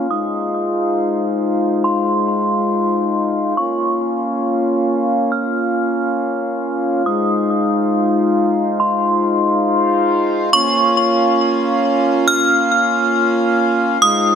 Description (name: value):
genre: hip hop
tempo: free time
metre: none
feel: none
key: Bb minor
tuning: A4 = 440 Hz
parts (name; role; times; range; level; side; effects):
- metallic FM bell; melody; 0.0-14.4 s; C6 to F6; -18 LUFS; left 1 dB; chorus, ping-pong delay
- pedal harmonium; sustained chords; 0.0-14.4 s; Ab3 to F5; -16 LUFS; equal; none
room: moderate huge ambient reverb, RT60 3.8 s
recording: low-pass filter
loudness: -14 LUFS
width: side -8 dB against mid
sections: 0.0-10.5 A section; 10.5-14.4 B section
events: filter sweep 0.0-10.5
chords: 0.1 Fm7; 3.6 Bbm; 7.1 Fm7; 10.5 Bbm